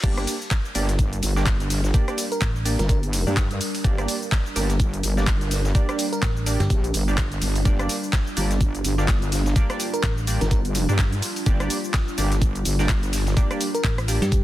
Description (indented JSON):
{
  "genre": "bass house",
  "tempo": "126 BPM",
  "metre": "4/4",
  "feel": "swing 58% on 16ths",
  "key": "G minor",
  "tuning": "A4 = 439 Hz",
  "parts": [
    { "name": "dark analog pad", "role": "sustained chords", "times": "0.9-14.4 s", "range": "G3 to Bb4", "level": "-32 LUFS", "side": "right 1 dB", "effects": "chorus, phaser, sidechain pumping" },
    { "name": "band-passed chord stab", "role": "stabs", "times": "0.0-14.2 s", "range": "Bb3 to D5", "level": "-31 LUFS", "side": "right 2 dB", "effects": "chorus, sidechain pumping, dub echo" },
    { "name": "wobble bass", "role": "bass", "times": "0.0-13.4 s", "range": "G1 to G2", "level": "-23 LUFS", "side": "equal", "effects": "chorus, overdrive, sidechain pumping" },
    { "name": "big-room dance drum kit", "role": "drums", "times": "0.0-14.4 s", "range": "crash cymbal, handclaps, hi-hat, rim click, shaker", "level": "-29 LUFS", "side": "equal", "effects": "overdrive" },
    { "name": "dusty soul sampler-style drum kit", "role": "drums", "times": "0.0-14.4 s", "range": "hi-hat, shaker, snare drum", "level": "-38 LUFS", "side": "right 2 dB", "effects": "none" },
    { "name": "electronic kick drum", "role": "drums", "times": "0.0-14.4 s", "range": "none", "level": "-21 LUFS", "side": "equal", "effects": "none" },
    { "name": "bell-like FM electric piano", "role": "melody", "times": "2.3-3.0, 6.1-6.9, 9.9-10.6, 13.7-14.4 s", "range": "G4 to Bb4", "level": "-31 LUFS", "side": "equal", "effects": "chorus, dub echo" },
    { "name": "metallic FM bass", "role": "bass", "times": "2.4-2.8, 6.2-6.7, 10.0-10.4, 13.8-14.4 s", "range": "G1 to G2", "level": "-24 LUFS", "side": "equal", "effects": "tube saturation, sidechain pumping" }
  ],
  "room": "little or no reverb",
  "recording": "dense, heavily limited modern master",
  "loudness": "-20 LUFS",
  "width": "side -14 dB against mid",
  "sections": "0.0-14.4 A section",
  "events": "none",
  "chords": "0.0 Gm",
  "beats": "| 0.04 0.51 0.99 1.46 | 1.94 2.42 2.89 3.37 | 3.85 4.32 4.80 5.27 | 5.75 6.23 6.70 7.18 | 7.65 8.13 8.61 9.08 | 9.56 10.04 10.51 10.99 | 11.46 11.94 12.42 12.89 | 13.37 13.85 14.32"
}